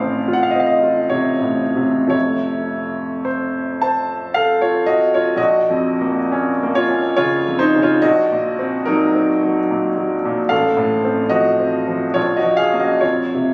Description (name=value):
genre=classical, romantic nocturne for solo piano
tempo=52-76 BPM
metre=3/4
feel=rubato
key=Bb minor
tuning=A4 = 440 Hz
part: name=bright concert grand piano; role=solo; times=0.0-13.5 s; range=A1 to A5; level=-18 LUFS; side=equal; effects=none
room=moderate concert hall reverb, RT60 2.3 s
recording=recorded on a phone in the room, studio reverb, compression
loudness=-18 LUFS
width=mono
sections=0.0-5.4 A section; 5.4-13.5 A section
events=none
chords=0.0 F/A; 2.1 F; 5.4 Bbm; 8.0 Cm7b5/Bb; 10.5 F/A; 12.2 Bbm; 13.0 F5